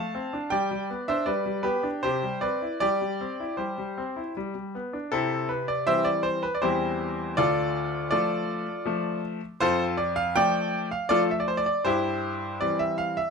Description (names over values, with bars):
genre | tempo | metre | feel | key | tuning
classical-period piano sonatina | 80 BPM | 3/4 | straight | C major | A4 = 440 Hz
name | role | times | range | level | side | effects
bright grand piano | solo | 0.0-13.3 s | D2 to A5 | -24 LUFS | equal | none
room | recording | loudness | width
light reverb | close, detailed microphones | -24 LUFS | side -5 dB against mid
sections
0.0-5.1 A section; 5.1-13.3 B section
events
none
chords
0.0 Dm7; 0.5 G; 2.0 C; 2.8 C/G; 4.4 G; 5.1 C; 6.6 C/E; 7.4 Dm; 9.6 Dm/F; 11.8 C/G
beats
| 0.52 1.27 2.03 | 2.81 3.59 4.36 | 5.13 5.88 6.63 | 7.38 8.12 8.86 | 9.61 10.35 11.09 | 11.85 12.61